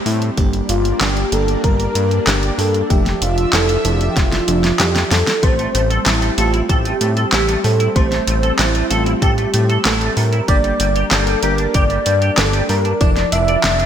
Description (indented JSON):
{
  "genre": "synthwave",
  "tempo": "95 BPM",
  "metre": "4/4",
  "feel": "straight",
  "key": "A phrygian",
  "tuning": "A4 = 440 Hz",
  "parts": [
    { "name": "warm velvety synth lead", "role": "melody", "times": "0.0-13.9 s", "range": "E4 to E5", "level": "-21 LUFS", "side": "equal", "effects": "chorus, ping-pong delay" },
    { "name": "analog string pad", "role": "sustained chords", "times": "0.0-13.9 s", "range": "F3 to E5", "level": "-26 LUFS", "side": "equal", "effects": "ensemble chorus, sidechain pumping" },
    { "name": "FM electric piano with soft pad layer", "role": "stabs", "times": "0.0-13.9 s", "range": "F3 to E5", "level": "-26 LUFS", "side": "right 2 dB", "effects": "chorus" },
    { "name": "soft round pluck", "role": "arpeggios", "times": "0.1-5.3 s", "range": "G3 to G4", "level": "-29 LUFS", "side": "left 1 dB", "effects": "none" },
    { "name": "fat analog bass", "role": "bass", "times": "0.1-13.9 s", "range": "F1 to A2", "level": "-18 LUFS", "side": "equal", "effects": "sidechain pumping" },
    { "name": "pop drum kit", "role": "drums", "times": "0.1-13.9 s", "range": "handclaps, hi-hat, snare drum", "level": "-20 LUFS", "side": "equal", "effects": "none" },
    { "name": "electronic kick drum", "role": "drums", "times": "0.4-13.1 s", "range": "none", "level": "-17 LUFS", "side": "equal", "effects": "none" },
    { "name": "FM electric piano with soft pad layer", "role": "second line", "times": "0.7-13.9 s", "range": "E4 to E5", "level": "-27 LUFS", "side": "right 2 dB", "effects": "chorus, phaser, cassette tape, digital delay" },
    { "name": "clean electric guitar", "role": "riff", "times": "5.4-13.9 s", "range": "G3 to D5", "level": "-23 LUFS", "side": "right 1 dB", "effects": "ensemble chorus, digital delay" }
  ],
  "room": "moderate lush hall reverb, RT60 2.3 s",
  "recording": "bright 1980s-style digital production",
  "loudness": "-13 LUFS",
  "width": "side -9 dB against mid",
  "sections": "0.0-13.9 A section",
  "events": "drum fill 4.2-5.4",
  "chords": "0.4 Gm; 2.9 Dmadd9/F; 5.4 Am7; 10.5 Gm; 13.0 Dmadd9/F",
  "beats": "| 0.38 1.01 1.64 2.27 | 2.90 3.54 4.17 4.80 | 5.43 6.06 6.69 7.32 | 7.96 8.59 9.22 9.85 | 10.48 11.11 11.74 12.38 | 13.01 13.64"
}